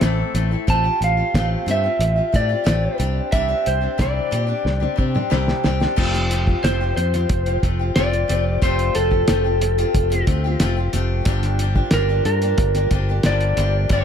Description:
folk rock and heartland rock; 91 BPM; 4/4; straight; A4 = 439 Hz
picked acoustic archtop guitar; accompaniment; 0.0-14.0 s; G2 to A4; -25 LUFS; left 4 dB; analog delay
fingered electric bass; bass; 0.0-14.0 s; F1 to C3; -21 LUFS; equal
cloth-damped thuddy drum kit; drums; 0.0-14.0 s; crash cymbal, hi-hat, kick drum, snare drum, toms; -22 LUFS; equal; analog delay
electric slide guitar; melody; 0.7-14.0 s; A4 to A5; -22 LUFS; right 1 dB; analog delay
little or no reverb; echo-heavy mix; -17 LUFS; side -8 dB against mid
0.0-6.0 A section; 6.0-14.0 B section
drum fill 4.7-6.0
0.0 Am; 0.7 Fadd9/A; 3.0 Cadd9; 6.0 Fadd9; 11.3 Gm7

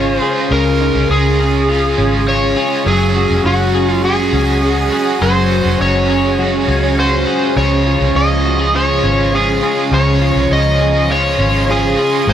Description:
dream pop; 102 BPM; 4/4; straight; Db major; A4 = 438 Hz
overdriven slide guitar; melody; 0.0-12.3 s; Gb4 to Eb5; -17 LUFS; left 1 dB; digital delay
overdriven electric guitar; accompaniment; 0.0-12.3 s; Db3 to Gb4; -20 LUFS; right 6 dB; harmonic tremolo, lush chorus
granular cloud pad; sustained chords; 0.0-12.3 s; Db4 to C6; -20 LUFS; right 2 dB; built-in reverb
clean electric guitar; arpeggios; 0.0-12.3 s; Db3 to Ab4; -18 LUFS; left 3 dB; analog chorus, digital delay
vintage muted fingered electric bass; bass; 0.0-12.3 s; F1 to Db2; -17 LUFS; equal
light reverb, digital ambience; -12 LUFS; side -10 dB against mid
0.0-12.3 A section
0.0 Db; 2.9 Gbsus2; 7.6 Db

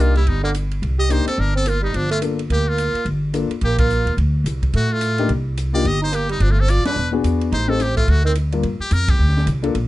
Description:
jazz, small-group swing and bop; 215 BPM; 4/4; swing 61% on 8ths; G minor; A4 = 441 Hz
trumpet with metal mute; melody; 0.0-9.5 s; Bb3 to Eb5; -24 LUFS; left 2 dB
mellow tenor saxophone; second line; 0.0-8.3 s; D3 to G4; -24 LUFS; right 4 dB
warm concert grand piano; accompaniment; 0.0-9.7 s; G2 to Bb4; -22 LUFS; left 6 dB
upright bass; bass; 0.0-9.9 s; E1 to A2; -19 LUFS; equal
open jazz drum kit; drums; 0.2-9.8 s; hi-hat, kick drum, ride cymbal, snare drum; -24 LUFS; equal
little or no reverb; nothing above 10.9 kHz, faint mains hum; -17 LUFS; side -16 dB against mid
0.0-8.6 A section; 8.6-9.9 A section
band accent 3.8, 6.8, 9.0
0.0 Cm9; 1.9 Gm7; 4.2 Dm7; 5.3 Cm; 6.4 G7sus2; 7.0 E7; 7.5 Am7b5; 8.1 D(b13); 8.6 Gm7

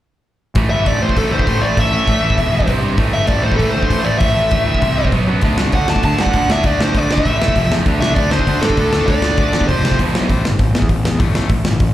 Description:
punk rock; 197 BPM; 4/4; straight; A minor; A4 = 440 Hz
fuzz picked electric bass; bass; 0.5-11.9 s; E1 to G2; -18 LUFS; equal; overdrive
crunchy overdriven guitar; riff; 0.6-11.9 s; E2 to D4; -23 LUFS; left 7 dB; slapback echo
crunchy overdriven guitar; riff; 0.6-10.3 s; E2 to D4; -21 LUFS; right 8 dB; slapback echo
big rock drum kit; drums; 0.6-11.9 s; hi-hat, kick drum, snare drum; -18 LUFS; equal
bluesy overdriven lead guitar; melody; 0.7-10.0 s; A4 to A5; -19 LUFS; left 1 dB; distortion, slapback echo, digital delay
little or no reverb; live gig heard through the venue's PA, recital hall reverb; -13 LUFS; side -13 dB against mid
0.6-10.3 A section; 10.3-11.9 B section
0.6 Am; 2.4 E5; 2.7 C5; 3.0 Am; 4.8 C5; 5.1 B5; 5.4 D; 7.3 A5; 7.6 F5; 7.9 D5; 9.7 F5; 10.0 E5; 10.3 A5

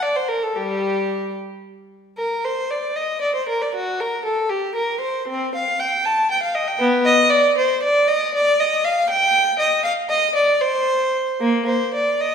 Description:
classical, baroque-style suite movement for unaccompanied violin; 73-80 BPM (dotted quarters); 6/8; rubato; G minor; A4 = 439 Hz
rich violin; solo; 0.0-12.3 s; G3 to A5; -17 LUFS; equal
wet recital hall reverb, RT60 1.6 s; heard from further back in the room; -17 LUFS; side -7 dB against mid
0.0-2.2 A section; 2.2-12.3 B section

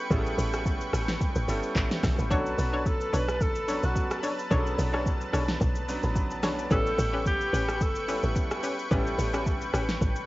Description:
amapiano; 109 BPM; 4/4; swing 55% on 16ths; A4 = 444 Hz
clear concert grand piano; accompaniment; 0.0-10.3 s; F#3 to B5; -35 LUFS; right 1 dB; cassette tape
lush unison pad; sustained chords; 0.0-10.3 s; B4 to C#6; -35 LUFS; equal; chorus, sidechain pumping, cassette tape
tight log drum bass; bass; 0.1-10.1 s; G1 to B1; -30 LUFS; equal
smooth R&B drum kit; drums; 0.1-10.3 s; handclaps, hi-hat, kick drum, rim click, shaker, snare drum; -30 LUFS; equal
breathy alto saxophone; melody; 2.3-8.4 s; F#4 to B4; -32 LUFS; equal; cassette tape
hollow square pluck; stabs; 2.3-9.8 s; C#4 to C#5; -33 LUFS; left 2 dB; chorus, cassette tape, analog delay
digital ambience; home recording on cassette, nothing above 7.6 kHz; -25 LUFS; side -18 dB against mid
0.0-10.3 A section
0.0 A9; 2.3 Bm9; 6.7 A9

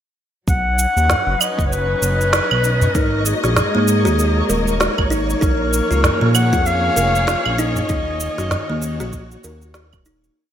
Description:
organic downtempo; 97 BPM; 4/4; swing 58% on 16ths; Eb minor; A4 = 440 Hz
breathy clarinet; melody; 0.5-9.4 s; Gb4 to Gb5; -21 LUFS; left 1 dB; ping-pong delay
dark symphonic string section; sustained chords; 0.5-10.4 s; Eb3 to D#5; -25 LUFS; left 1 dB; sidechain pumping
smooth synth bass; bass; 0.5-10.3 s; Eb1 to Bb2; -20 LUFS; equal; sidechain pumping
electronic kick drum; drums; 0.5-10.0 s; -21 LUFS; equal; studio reverb
electronic shaker, snare drum and claves; drums; 0.5-10.3 s; -22 LUFS; right 2 dB; studio reverb, gated reverb
twinkling granular texture; texture; 0.7-10.4 s; C#5; -31 LUFS; right 2 dB; built-in reverb
udu; percussion; 1.1-8.7 s; -24 LUFS; right 1 dB
buzzing kalimba; arpeggios; 2.9-10.2 s; Bb3 to Bb4; -23 LUFS; equal; ping-pong delay
moderate plate reverb, RT60 3.0 s; bright 1980s-style digital production; -15 LUFS; side -10 dB against mid
0.5-10.4 groove
fade-out 7.1-10.4
0.5 Badd9; 3.0 Absus2; 5.4 Bbm7; 7.9 Ebm7

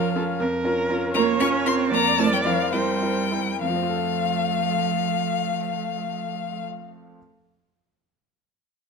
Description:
quick classical-period movement for piano quartet; 66-82 BPM (dotted quarters); 6/8; rubato; F major; A4 = 440 Hz
rich violin; melody; 0.0-6.6 s; F5 to Db6; -26 LUFS; left 11 dB
rich cello; second line; 0.0-6.6 s; F3 to Db4; -26 LUFS; right 8 dB
clear baby grand piano; accompaniment; 0.0-7.2 s; F2 to F5; -27 LUFS; equal
warm viola; accompaniment; 0.0-6.6 s; A3 to D5; -29 LUFS; right 3 dB
moderate recital hall reverb, RT60 1.4 s; close, detailed microphones; -21 LUFS; side -5 dB against mid
0.0-3.6 A section; 3.6-7.2 B section
slowing down 0.0-3.6
0.0 Bbm/F; 1.9 C7/F; 3.6 F

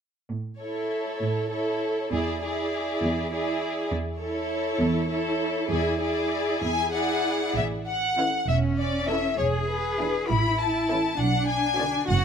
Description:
quick classical-period movement for string orchestra; 66 BPM (dotted quarters); 6/8; straight; A major; A4 = 439 Hz
rich chamber cello section; bass; 0.3-12.2 s; E2 to G#4; -29 LUFS; right 1 dB
rich chamber violin section; melody; 0.6-12.2 s; B4 to B5; -28 LUFS; left 4 dB
rich chamber violin section; second line; 0.6-12.0 s; E4 to D5; -30 LUFS; left 1 dB
rich chamber viola section; accompaniment; 0.6-12.0 s; D3 to E4; -31 LUFS; right 3 dB
warm chamber double bass section; bass; 7.6-12.2 s; E1 to B1; -27 LUFS; right 4 dB
light reverb; close, detailed microphones; -24 LUFS; side -7 dB against mid
0.3-7.6 A section; 7.6-12.2 B section
0.3 A; 2.1 E7; 7.6 A; 9.4 E7; 10.3 A; 11.2 Bm

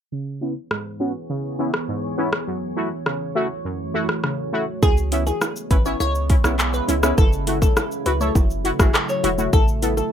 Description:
dancehall; 102 BPM; 4/4; straight; C# minor; A4 = 439 Hz
synth brass stab; accompaniment; 0.1-9.9 s; F#2 to A4; -24 LUFS; left 1 dB; chorus, low-pass filter
deep dark ambient pad; sustained chords; 0.9-10.1 s; B2 to C#5; -28 LUFS; right 2 dB; chorus, built-in reverb, sidechain pumping, low-pass filter
pop drum kit; drums; 0.7-10.1 s; handclaps, hi-hat, kick drum, rim click, shaker; -19 LUFS; equal
glassy wavetable pluck; melody; 4.8-10.1 s; G#4 to C#5; -26 LUFS; left 1 dB; chorus, ping-pong delay
punchy sub bass; bass; 4.8-10.0 s; E1 to C#2; -24 LUFS; equal
bongos; percussion; 4.8-10.1 s; -29 LUFS; equal
flamenco guitar; arpeggios; 8.8-9.5 s; G#4 to C#5; -25 LUFS; left 4 dB
little or no reverb; rough home demo mix; -19 LUFS; side -9 dB against mid
0.1-4.8 A section; 4.8-10.1 B section
filter sweep 0.1-4.8
0.1 C#m7; 2.5 F#m7; 4.8 C#m7; 7.2 F#m7; 9.5 Asus2

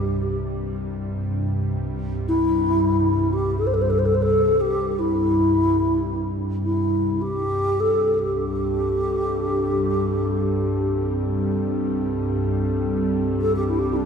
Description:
world meditative, free-time meditation music; free time; C major pentatonic; A4 = 438 Hz
mellow bass flute; melody; 0.0-14.1 s; D4 to C5; -21 LUFS; equal; tape echo
ethereal airy pad; drone; 0.0-14.1 s; C2 to G2; -24 LUFS; right 1 dB; ensemble chorus, built-in reverb
glass harmonica; texture; 7.8-14.1 s; C4 to A4; -25 LUFS; left 2 dB
wet lush hall reverb, RT60 2.8 s; dreamy mix soaked in reverb; -20 LUFS; side -6 dB against mid
0.0-14.1 A section

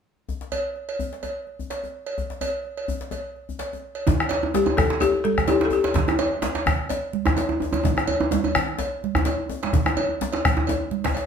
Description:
west african traditional, West African drum ensemble; 127 BPM; 4/4; swing 54% on 16ths; A4 = 441 Hz
djembe; percussion; 0.3-11.3 s; -31 LUFS; left 4 dB
cowbell; percussion; 0.5-11.3 s; -30 LUFS; right 2 dB
bombo; percussion; 4.1-11.2 s; -24 LUFS; left 1 dB
congas; percussion; 4.1-11.1 s; -29 LUFS; right 9 dB
djembe; percussion; 4.1-11.1 s; -25 LUFS; right 2 dB
balafon; melody; 4.5-6.6 s; G4 to A4; -22 LUFS; left 5 dB
wet studio reverb, RT60 0.7 s; band playing live in one room; -21 LUFS; side -7 dB against mid
0.3-4.1 A section; 4.1-11.3 B section

